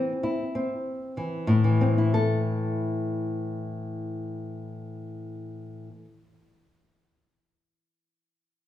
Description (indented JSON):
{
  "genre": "classical",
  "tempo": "48 BPM",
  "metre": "4/4",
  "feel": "rubato",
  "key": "A minor",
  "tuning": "A4 = 440 Hz",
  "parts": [
    { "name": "nylon-string guitar", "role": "accompaniment", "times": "0.0-6.5 s", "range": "A2 to A4", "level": "-26 LUFS", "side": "left 2 dB", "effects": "none" }
  ],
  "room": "wet recital hall reverb, RT60 1.4 s",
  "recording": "small room ambience",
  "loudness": "-24 LUFS",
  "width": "side -12 dB against mid",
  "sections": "0.0-2.2 A section; 2.2-7.1 B section",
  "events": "slowing down 0.0-2.2",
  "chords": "0.0 Am; 2.2 A5",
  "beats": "0.86 | 2.15 3.42 4.67 5.91"
}